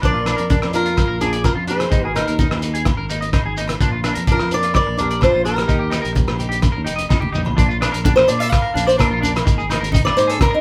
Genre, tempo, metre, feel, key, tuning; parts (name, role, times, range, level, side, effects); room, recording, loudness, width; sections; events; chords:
highlife guitar band; 127 BPM; 4/4; straight; Bb mixolydian; A4 = 440 Hz
semi-hollow electric guitar; accompaniment; 0.0-10.3 s; Eb3 to G4; -31 LUFS; equal
electric guitar at the edge of break-up; arpeggios; 0.0-10.6 s; D4 to Eb5; -27 LUFS; equal
fingered electric bass; bass; 0.0-10.4 s; F1 to Bb2; -27 LUFS; equal
cloth-damped thuddy drum kit; drums; 0.0-10.5 s; hi-hat, kick drum, rim click, snare drum, toms; -23 LUFS; equal
congas; percussion; 0.0-10.5 s; -30 LUFS; equal
shekere; percussion; 0.0-10.5 s; -28 LUFS; equal
fingerpicked swing-style acoustic guitar; melody; 0.1-10.6 s; Eb4 to F5; -22 LUFS; equal
breathy alto saxophone; second line; 0.1-6.4 s; Eb4 to Bb4; -28 LUFS; equal
agogo bells; percussion; 0.3-10.5 s; -33 LUFS; equal
moderate small room reverb, RT60 0.5 s; band playing live in one room; -18 LUFS; mono
0.0-7.6 A section; 7.6-10.6 B section
drum fill 7.0-7.6; steel-string acoustic guitar solo 7.6-10.6
0.0 Bb; 1.9 Absus2; 3.8 Bb; 5.7 Eb; 7.6 Bb; 9.5 Absus2